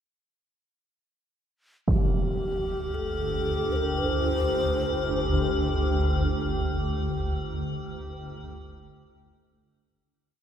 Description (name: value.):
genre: dark ambient drone.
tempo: free time.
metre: none.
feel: none.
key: unclear.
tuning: A4 = 436 Hz.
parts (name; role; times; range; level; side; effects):
breathy mellow long shakuhachi; melody; 1.9-5.5 s; G4 to C5; -31 LUFS; equal; shimmer reverb, tape echo.
swarming drone; drone; 2.6-10.2 s; G1 to D2; -28 LUFS; equal; built-in reverb.
impact; percussion; 1.9-2.1 s; none; -27 LUFS; right 1 dB; low-pass filter on sfx.
metallic inharmonic drone; texture; 2.3-10.1 s; G4; -32 LUFS; left 2 dB; chorus, built-in reverb, shimmer reverb.
room: moderate huge ambient reverb, RT60 9.3 s.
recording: none.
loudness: -24 LUFS.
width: side -9 dB against mid.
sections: 1.9-10.1 A section.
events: filter sweep on synth drone 1.9-10.1; fade-out 6.0-10.1.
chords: 1.9 G5.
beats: free time.